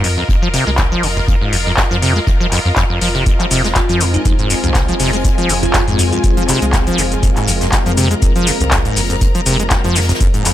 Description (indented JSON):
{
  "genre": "acid house",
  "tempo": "121 BPM",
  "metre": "4/4",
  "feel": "swing 54% on 16ths",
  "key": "F minor pentatonic",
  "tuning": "A4 = 442 Hz",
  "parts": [
    { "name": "acid bass, saw", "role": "riff", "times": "0.0-10.5 s", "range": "F1 to Ab3", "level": "-18 LUFS", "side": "equal", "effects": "wide subtle chorus, sidechain pumping, ping-pong delay" },
    { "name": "round analog bass", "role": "bass", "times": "0.0-10.5 s", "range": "F1 to F2", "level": "-19 LUFS", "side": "equal", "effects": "tube saturation, sidechain pumping" },
    { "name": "electro analog drum machine", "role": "drums", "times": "0.0-10.5 s", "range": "cabasa, handclaps, hi-hat", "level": "-19 LUFS", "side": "left 2 dB", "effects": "none" },
    { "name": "jazz brush drum kit", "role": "drums", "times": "0.0-10.5 s", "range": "hi-hat, snare drum", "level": "-29 LUFS", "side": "left 3 dB", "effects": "high-pass filter on hats, high-pass filter on snare, high-pass filter on room" },
    { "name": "rich studio string section", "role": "texture", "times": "0.0-10.5 s", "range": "F4 to Bb5", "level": "-24 LUFS", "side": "left 1 dB", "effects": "sidechain pumping" },
    { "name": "electronic kick drum", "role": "drums", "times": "0.3-10.3 s", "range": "none", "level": "-16 LUFS", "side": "equal", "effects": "none" },
    { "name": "string machine, full ensemble", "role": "sustained chords", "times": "3.3-10.5 s", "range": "Ab3 to C5", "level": "-22 LUFS", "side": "equal", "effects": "ensemble chorus, sidechain pumping" },
    { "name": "bell-like FM electric piano", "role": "melody", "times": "3.8-6.6 s", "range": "Eb4 to F4", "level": "-24 LUFS", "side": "equal", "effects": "chorus, phaser, ping-pong delay" }
  ],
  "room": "little or no reverb",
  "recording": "none",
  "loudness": "-12 LUFS",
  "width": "side -12 dB against mid",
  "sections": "0.0-10.5 A section",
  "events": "none",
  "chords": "0.0 Fm"
}